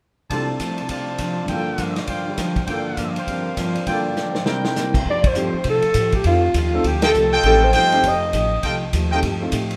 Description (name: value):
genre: jazz, big band swing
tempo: 202 BPM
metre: 4/4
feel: swing 61% on 8ths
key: F mixolydian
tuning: A4 = 440 Hz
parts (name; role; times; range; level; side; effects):
- picked plugged-in steel-string acoustic guitar; accompaniment; 0.3-9.7 s; G2 to G4; -30 LUFS; equal; none
- warm baby grand piano; accompaniment; 0.3-9.5 s; C2 to D5; -30 LUFS; equal; none
- clear trumpet section; stabs; 0.3-9.2 s; C4 to A5; -25 LUFS; equal; none
- vintage drum kit; drums; 0.3-9.8 s; crash cymbal, hi-hat, kick drum, ride cymbal, snare drum; -28 LUFS; equal; none
- clear saxophone section; melody; 5.1-8.6 s; F4 to Eb5; -22 LUFS; equal; none
- upright bass; bass; 5.1-9.8 s; F1 to C3; -25 LUFS; equal; none
room: moderate recital hall reverb, RT60 1.5 s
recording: none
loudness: -20 LUFS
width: mono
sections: 0.3-5.1 A section; 5.1-9.8 B section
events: drum fill 4.2-4.8; band accent 5.2, 7.0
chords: 0.3 F6/C; 1.5 Gm7; 4.5 C7; 5.1 F9